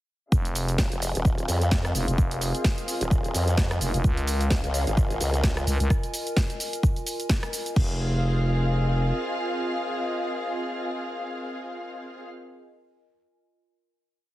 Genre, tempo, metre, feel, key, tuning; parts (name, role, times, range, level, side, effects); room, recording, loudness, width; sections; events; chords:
bass house; 129 BPM; 4/4; swing 56% on 16ths; F minor; A4 = 440 Hz
dark studio string section; sustained chords; 0.3-12.2 s; C4 to F5; -32 LUFS; left 1 dB; sidechain pumping, low-pass filter
growling FM bass; bass; 0.3-9.1 s; F1 to Db2; -24 LUFS; equal; sidechain pumping
electronic kick drum; drums; 0.3-7.9 s; -23 LUFS; equal
house drum kit; drums; 0.3-7.9 s; cabasa, crash cymbal, hi-hat, rim click, snare drum; -31 LUFS; equal
warbly tape-like pad; texture; 0.3-12.2 s; F4 to Ab5; -34 LUFS; equal; chorus, built-in reverb, sidechain pumping
formant-sweep wobble bass; bass; 0.8-5.7 s; Eb1 to F2; -26 LUFS; equal; chorus, overdrive, sidechain pumping
light reverb; heavily compressed radio sound; -23 LUFS; side -15 dB against mid
0.3-7.8 drop; 7.8-11.5 final chord
drop 0.3-7.8
0.3 Fm; 4.0 Db; 7.8 Fm